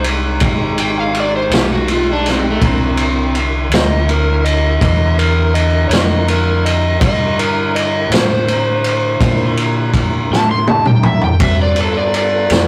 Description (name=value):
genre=slow blues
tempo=55 BPM (dotted quarters)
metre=12/8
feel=straight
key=unclear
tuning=A4 = 440 Hz
part: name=overdriven slide guitar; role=melody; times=0.0-12.7 s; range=A3 to C6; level=-20 LUFS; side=equal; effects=none
part: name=mellow tonewheel organ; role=sustained chords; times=0.0-12.7 s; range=D3 to Bb4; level=-25 LUFS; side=equal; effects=chorus vibrato, slow rotary speaker
part: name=deep dub fingered electric bass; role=bass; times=0.0-12.7 s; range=Ab1 to Bb2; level=-20 LUFS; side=equal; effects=none
part: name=vintage drum kit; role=drums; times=0.0-12.7 s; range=kick drum, ride cymbal, snare drum, toms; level=-18 LUFS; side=equal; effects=none
room=light reverb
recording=rough rehearsal-room recording, warm saturation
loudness=-14 LUFS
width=mono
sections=0.0-12.7 A section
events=electric slide guitar solo 0.0-12.7; drum fill 10.3-11.4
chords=0.0 Fm7 (rootless); 2.6 C7; 11.4 G7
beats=0.41 1.51 | 2.61 3.71 4.81 5.90 | 7.00 8.10 9.20 10.29 | 11.39 12.49